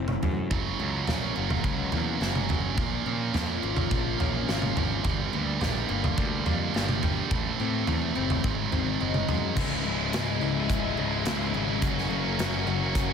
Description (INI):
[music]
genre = quiet-loud alternative rock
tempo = 106 BPM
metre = 4/4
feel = straight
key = C# dorian from 9.6 s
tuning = A4 = 440 Hz
[part]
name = picked steel-string acoustic guitar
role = arpeggios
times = 0.0-13.1 s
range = C#2 to F#4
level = -34 LUFS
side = left 9 dB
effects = slapback echo
[part]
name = fuzz picked electric bass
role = bass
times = 0.0-13.1 s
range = C#1 to A#2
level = -32 LUFS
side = equal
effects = overdrive
[part]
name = big rock drum kit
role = drums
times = 0.1-13.1 s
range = crash cymbal, hi-hat, kick drum, snare drum, toms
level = -30 LUFS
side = equal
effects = none
[part]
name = scooped high-gain guitar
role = riff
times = 0.5-13.1 s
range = C#2 to F#4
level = -30 LUFS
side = right 8 dB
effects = distortion
[part]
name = thick fuzz guitar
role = riff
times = 9.6-13.1 s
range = C#2 to F#4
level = -31 LUFS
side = left 10 dB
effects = distortion, slapback echo
[sound]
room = moderate lush hall reverb, RT60 2.6 s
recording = big arena sound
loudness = -25 LUFS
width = side -7 dB against mid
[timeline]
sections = 0.0-9.6 A section; 9.6-13.1 B section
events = none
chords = 0.0 Am; 0.5 F#; 2.8 A#m; 5.0 Gm; 7.3 Am; 8.4 G#7; 9.6 C#m; 11.8 F#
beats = | 0.51 1.08 1.65 2.22 | 2.78 3.35 3.92 4.48 | 5.05 5.61 6.18 6.75 | 7.31 7.88 8.44 9.01 | 9.57 10.13 10.70 11.27 | 11.83 12.39 12.96